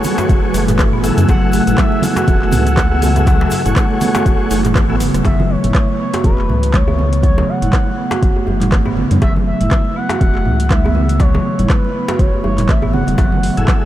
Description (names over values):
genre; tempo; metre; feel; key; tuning
afro house; 121 BPM; 4/4; swing 56% on 16ths; F# minor; A4 = 440 Hz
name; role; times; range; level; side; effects
ethereal airy pad; sustained chords; 0.0-5.2, 13.2-13.9 s; C#3 to B4; -24 LUFS; right 2 dB; ensemble chorus, built-in reverb, phaser, sidechain pumping
marimba with medium mallets; arpeggios; 0.0-13.8 s; C#3 to F#4; -19 LUFS; right 1 dB; sidechain pumping, analog delay
tonewheel organ; stabs; 0.0-5.0, 13.6-13.9 s; A3 to E5; -22 LUFS; left 2 dB; chorus vibrato, sidechain pumping, analog delay
afro-pop drum kit; drums; 0.0-13.8 s; handclaps, hi-hat, rim click, toms; -23 LUFS; right 1 dB; none
congas; percussion; 0.0-13.9 s; none; -24 LUFS; right 2 dB; none
egg shaker; percussion; 0.0-5.2 s; none; -35 LUFS; left 5 dB; none
djembe; percussion; 0.2-13.3 s; none; -26 LUFS; left 1 dB; none
round analog bass; bass; 0.3-13.7 s; E1 to F#2; -18 LUFS; equal; sidechain pumping
electronic kick drum; drums; 0.3-13.8 s; none; -14 LUFS; equal; overdrive
expressive synth lead; melody; 1.3-13.9 s; B4 to F#5; -23 LUFS; left 1 dB; chorus, analog delay
room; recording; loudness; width
light reverb, studio ambience; none; -12 LUFS; side -13 dB against mid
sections
0.0-5.3 A section; 5.3-13.9 B section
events
drop 0.0-5.3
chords
0.0 F#m9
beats
0.29 0.79 | 1.28 1.78 2.28 2.77 | 3.27 3.76 4.26 4.75 | 5.25 5.75 6.24 6.74 | 7.24 7.73 8.23 8.72 | 9.22 9.71 10.21 10.71 | 11.20 11.70 12.19 12.69 | 13.19 13.68